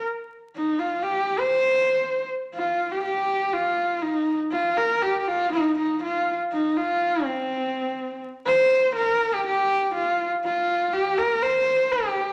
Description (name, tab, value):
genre	mongolian traditional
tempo	121 BPM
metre	4/4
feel	straight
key	C yu mode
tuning	A4 = 440 Hz
part	clear horsehead fiddle	melody	0.0-12.3 s	C4 to C5	-24 LUFS	equal	none
room	wet large studio reverb, RT60 1.2 s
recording	vinyl crackle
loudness	-24 LUFS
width	mono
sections	0.0-8.5 A section; 8.5-12.3 B section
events	none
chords	none